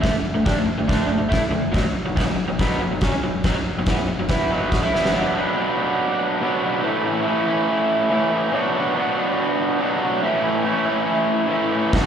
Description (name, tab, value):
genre	garage rock duo or trio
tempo	142 BPM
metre	4/4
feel	straight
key	unclear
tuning	A4 = 438 Hz
part	raw garage guitar	riff	0.0-12.1 s	A2 to F#4	-19 LUFS	equal	overdrive, slapback echo
part	oversized low-tuned drum kit	drums	0.0-5.1, 11.9-12.0 s	crash cymbal, kick drum, snare drum	-22 LUFS	equal	none
room	light reverb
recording	live gig heard through the venue's PA, recital hall reverb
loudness	-18 LUFS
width	side -8 dB against mid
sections	0.0-5.1 A section; 5.1-12.1 B section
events	drum fill 4.9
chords	0.0 D5; 1.7 B5; 5.1 Bm; 6.8 A; 8.5 Bm; 10.2 A